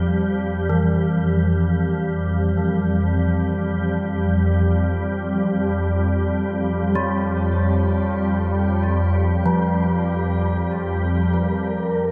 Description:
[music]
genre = dark ambient drone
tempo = free time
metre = none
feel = none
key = unclear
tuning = A4 = 440 Hz
[part]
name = organ-like drone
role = drone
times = 0.0-12.1 s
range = F2 to G3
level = -22 LUFS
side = equal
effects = ensemble chorus, built-in reverb
[part]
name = gamelan-type bronze metallophone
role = arpeggios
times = 0.7-12.1 s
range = E3 to G3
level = -27 LUFS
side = equal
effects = delay
[part]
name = wind-like tuned noise texture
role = texture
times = 11.4-12.1 s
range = Bb4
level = -28 LUFS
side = equal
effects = built-in reverb
[sound]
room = moderate huge ambient reverb, RT60 8.8 s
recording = none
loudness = -21 LUFS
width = mono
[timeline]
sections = 0.0-11.3 A section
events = none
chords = 0.0 Fsus2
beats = free time

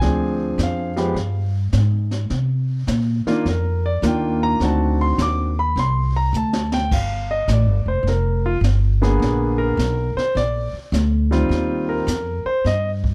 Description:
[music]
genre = jazz piano trio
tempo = 104 BPM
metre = 4/4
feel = swing 66% on 8ths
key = G minor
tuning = A4 = 440 Hz
[part]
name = warm concert grand piano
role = melody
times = 0.0-12.9 s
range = D3 to D6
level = -24 LUFS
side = equal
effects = plate reverb
[part]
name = upright bass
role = bass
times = 0.0-13.1 s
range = F1 to C3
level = -22 LUFS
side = equal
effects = none
[part]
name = jazz brush drum kit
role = drums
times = 0.0-13.1 s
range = brushed snare drum, crash cymbal, hi-hat, kick drum, snare drum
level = -29 LUFS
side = equal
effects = none
[sound]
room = light reverb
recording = dark, warm production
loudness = -20 LUFS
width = mono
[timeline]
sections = 0.0-13.1 A section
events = grand piano solo 0.0-13.1; drum fill 6.3-6.9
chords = 0.0 Dm7b5; 1.2 N.C.; 2.3 Cm11; 4.6 D7b9; 6.9 Gm7; 9.2 Bb7b9; 11.5 Eb69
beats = | 0.02 0.60 1.17 1.74 | 2.32 2.89 3.47 4.04 | 4.62 5.19 5.76 6.34 | 6.91 7.49 8.06 8.64 | 9.21 9.79 10.36 10.94 | 11.51 12.09 12.66

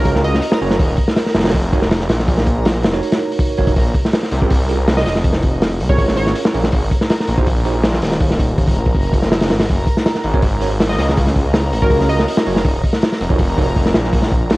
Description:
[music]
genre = drum and bass, jungle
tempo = 162 BPM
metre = 4/4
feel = straight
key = unclear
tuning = A4 = 440 Hz
[part]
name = glassy wavetable pluck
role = melody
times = 0.0-0.5, 5.0-6.4, 10.9-12.4 s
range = Bb4 to Eb5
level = -25 LUFS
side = equal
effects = chorus, cassette tape, dub echo
[part]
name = bell-like tine electric piano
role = stabs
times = 0.0-7.7, 10.3-13.7 s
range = Db4 to Db5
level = -25 LUFS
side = right 5 dB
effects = vintage 12-bit sampler grit, dub echo
[part]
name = detuned saw bass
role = bass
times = 0.0-14.6 s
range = Eb1 to Db2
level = -18 LUFS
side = equal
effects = tube saturation
[part]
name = backwards swelling texture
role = texture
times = 0.0-14.6 s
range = Bb4 to Bb5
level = -28 LUFS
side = right 1 dB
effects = built-in reverb
[part]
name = crunchy breakbeat drum kit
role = drums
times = 0.1-14.6 s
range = hi-hat, kick drum, snare drum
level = -16 LUFS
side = equal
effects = none
[sound]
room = light reverb, small room ambience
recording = home recording on cassette, vinyl crackle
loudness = -13 LUFS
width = side -20 dB against mid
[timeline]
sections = 0.0-14.6 A section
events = none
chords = 0.0 Gb; 0.8 Ebm7; 3.8 Bbm7; 6.7 Ab7(no3); 9.7 Gb; 12.7 Eb5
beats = 0.06 0.43 | 0.80 1.17 1.54 1.91 | 2.28 2.65 3.02 3.39 | 3.76 4.13 4.50 4.87 | 5.24 5.61 5.98 6.35 | 6.72 7.09 7.46 7.83 | 8.21 8.58 8.95 9.32 | 9.69 10.06 10.43 10.80 | 11.17 11.54 11.91 12.28 | 12.65 13.02 13.39 13.76 | 14.13 14.50

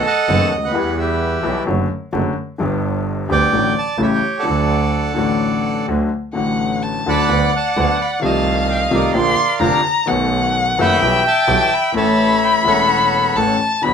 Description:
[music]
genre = tango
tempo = 128 BPM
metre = 4/4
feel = rubato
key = D major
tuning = A4 = 439 Hz
[part]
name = bandoneon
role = melody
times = 0.0-13.6 s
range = G4 to B5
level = -18 LUFS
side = right 3 dB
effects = none
[part]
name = warm grand piano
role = accompaniment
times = 0.3-13.9 s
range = E1 to A4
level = -20 LUFS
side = left 4 dB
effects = none
[part]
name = clear double bass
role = bass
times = 0.3-13.9 s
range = E1 to E2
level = -22 LUFS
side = right 4 dB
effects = none
[part]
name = warm violin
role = second line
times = 6.3-13.9 s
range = F5 to C6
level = -17 LUFS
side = left 3 dB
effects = none
[sound]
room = moderate studio ambience, RT60 0.5 s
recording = minimal, uncompressed stereo recording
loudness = -14 LUFS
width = side -7 dB against mid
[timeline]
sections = 0.0-13.9 A section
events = none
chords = 0.0 B7; 0.7 Em; 1.7 D/F#; 2.6 G; 3.5 D/A; 4.0 A7; 4.5 D; 7.3 Bm/D; 8.2 F7/C; 9.1 Bb; 10.1 B7; 11.0 Em/B; 11.9 A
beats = 0.28 | 0.74 1.20 1.67 2.13 | 2.59 3.06 3.53 4.00 | 4.46 4.93 5.41 5.88 | 6.36 6.83 7.30 7.76 | 8.22 8.68 9.15 9.61 | 10.07 10.54 11.01 11.47 | 11.94 12.41 12.88 13.36 | 13.83

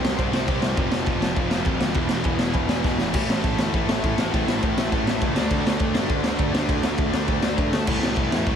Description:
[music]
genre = punk rock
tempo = 203 BPM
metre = 4/4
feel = straight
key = unclear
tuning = A4 = 440 Hz
[part]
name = overdriven electric guitar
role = riff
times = 0.0-8.6 s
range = E2 to D4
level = -28 LUFS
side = right 10 dB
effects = slapback echo
[part]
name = raw garage guitar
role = riff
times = 0.0-8.6 s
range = E2 to D4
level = -28 LUFS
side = left 11 dB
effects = overdrive, slapback echo
[part]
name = tight distorted guitar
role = riff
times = 0.0-8.6 s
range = E2 to D4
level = -29 LUFS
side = left 2 dB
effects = distortion, slapback echo
[part]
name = fuzz picked electric bass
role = bass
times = 0.0-8.6 s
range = E1 to G2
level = -30 LUFS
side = equal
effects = overdrive
[part]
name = raw garage drum kit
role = drums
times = 0.0-8.5 s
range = crash cymbal, kick drum, ride cymbal, snare drum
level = -23 LUFS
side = equal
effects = none
[sound]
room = light reverb, small room ambience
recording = none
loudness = -20 LUFS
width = side -8 dB against mid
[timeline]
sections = 0.0-3.1 A section; 3.1-8.6 B section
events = drum fill 2.8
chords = 0.0 C5; 0.8 F5; 2.0 E5; 3.1 A5; 5.4 D5; 7.9 Am/C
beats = 0.18 0.48 | 0.77 1.07 1.37 1.66 | 1.96 2.25 2.55 2.85 | 3.14 3.44 3.73 4.03 | 4.33 4.62 4.92 5.21 | 5.51 5.80 6.10 6.40 | 6.69 6.99 7.28 7.58 | 7.88 8.17 8.47

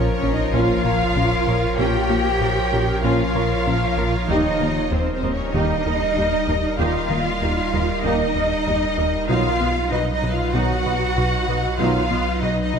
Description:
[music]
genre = cinematic, hybrid orchestral and electronic film score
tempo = 96 BPM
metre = 4/4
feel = straight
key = Bb dorian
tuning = A4 = 440 Hz
[part]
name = rich symphonic violin section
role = melody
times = 0.0-12.8 s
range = C5 to G5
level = -29 LUFS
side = left 3 dB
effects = none
[part]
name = warm symphonic violin section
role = second line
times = 0.0-12.8 s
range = C5 to G5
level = -27 LUFS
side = left 1 dB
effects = none
[part]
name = evolving wavetable pad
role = sustained chords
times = 0.0-12.8 s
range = F3 to Eb5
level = -26 LUFS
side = right 1 dB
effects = chorus, built-in reverb
[part]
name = glassy wavetable pluck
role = arpeggios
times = 0.0-12.8 s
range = Eb3 to B4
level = -30 LUFS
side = right 1 dB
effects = chorus, digital delay
[part]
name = rubbery square bass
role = riff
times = 0.0-12.8 s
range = Eb2 to B3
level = -26 LUFS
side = left 3 dB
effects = none
[part]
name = punchy sub bass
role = bass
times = 0.0-12.8 s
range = Eb1 to B1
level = -28 LUFS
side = equal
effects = none
[part]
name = rich symphonic cello section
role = bass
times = 0.0-12.8 s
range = C4 to G4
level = -25 LUFS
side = right 2 dB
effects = none
[part]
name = sub drop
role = sound effects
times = 0.0-1.8 s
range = none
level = -33 LUFS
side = equal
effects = none
[part]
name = rich symphonic viola section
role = accompaniment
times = 0.2-12.8 s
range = F#3 to Eb5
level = -30 LUFS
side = right 1 dB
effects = none
[part]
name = warm studio double bass section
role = bass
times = 0.2-12.8 s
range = Bb1 to Eb2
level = -30 LUFS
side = right 3 dB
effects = none
[part]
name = mellow French horn section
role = sustained chords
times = 0.5-12.0 s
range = Bb3 to D#4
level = -32 LUFS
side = left 3 dB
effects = none
[part]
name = mellow trombone section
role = sustained chords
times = 0.5-12.0 s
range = D#3 to Bb3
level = -32 LUFS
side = right 4 dB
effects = none
[sound]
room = moderate scoring stage reverb, RT60 1.6 s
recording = none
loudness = -18 LUFS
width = side -6 dB against mid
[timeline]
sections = 0.0-12.8 A section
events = impact 0.0-1.8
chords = 0.0 Bbm; 4.3 Eb; 9.3 B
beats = 0.54 1.17 | 1.79 2.42 3.04 3.67 | 4.29 4.92 5.54 6.17 | 6.79 7.42 8.04 8.67 | 9.29 9.92 10.54 11.17 | 11.79 12.42

